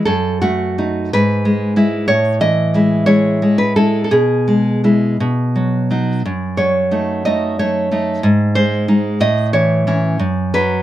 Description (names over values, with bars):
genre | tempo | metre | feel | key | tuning
romantic piece for solo classical guitar | 54-64 BPM (dotted quarters) | 6/8 | rubato | E major | A4 = 440 Hz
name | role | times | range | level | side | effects
nylon-string guitar | solo | 0.0-10.8 s | F#2 to D#5 | -13 LUFS | equal | none
room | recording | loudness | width
light reverb | none | -13 LUFS | side -13 dB against mid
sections
0.0-10.8 A section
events
none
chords
0.0 F#m6; 1.1 E/G#; 2.1 A5; 4.1 E/B; 5.2 B; 6.2 D#dim/F#; 8.2 G#; 9.2 A; 10.2 N.C.